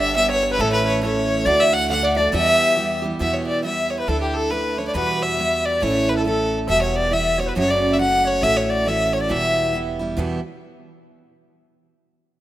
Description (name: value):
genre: celtic folk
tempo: 138 BPM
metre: 2/4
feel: swing 61% on 8ths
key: E dorian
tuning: A4 = 438 Hz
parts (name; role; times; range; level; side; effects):
- clear fiddle; melody; 0.0-9.7 s; G4 to F#5; -20 LUFS; equal; none
- open-back banjo; second line; 0.0-3.0 s; A4 to F#5; -30 LUFS; right 5 dB; none
- wooden flute; second line; 0.0-9.7 s; G4 to F#5; -26 LUFS; left 2 dB; none
- picked steel-string acoustic guitar; accompaniment; 0.0-10.4 s; E2 to A4; -24 LUFS; right 3 dB; none
- upright bass; bass; 0.0-10.4 s; E1 to E2; -29 LUFS; equal; none
room: light reverb, studio reverb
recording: rough home demo mix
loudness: -17 LUFS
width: side -14 dB against mid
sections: 0.0-3.2 A section; 3.2-10.2 B section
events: none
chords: 0.0 G; 0.6 A; 1.5 D; 2.3 Em; 4.1 Dsus2; 4.9 Emadd9; 5.8 A; 6.7 Emadd9; 7.6 F#m; 8.4 A6; 9.3 Em